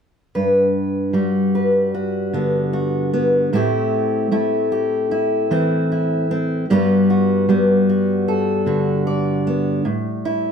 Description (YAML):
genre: folk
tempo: 76 BPM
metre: 4/4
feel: straight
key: G major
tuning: A4 = 435 Hz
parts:
  - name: fingerpicked steel-string acoustic guitar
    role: solo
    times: 0.3-10.5 s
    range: G2 to D5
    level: -16 LUFS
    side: equal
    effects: none
room: light reverb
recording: none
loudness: -16 LUFS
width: side -7 dB against mid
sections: 0.3-6.7 A section; 6.7-10.5 B section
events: none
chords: 0.3 Gmaj7; 3.5 Am7; 6.7 Gmaj7; 9.9 A7(no3)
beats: | 0.34 1.13 1.93 2.72 | 3.52 4.31 5.10 5.90 | 6.69 7.48 8.27 9.06 | 9.86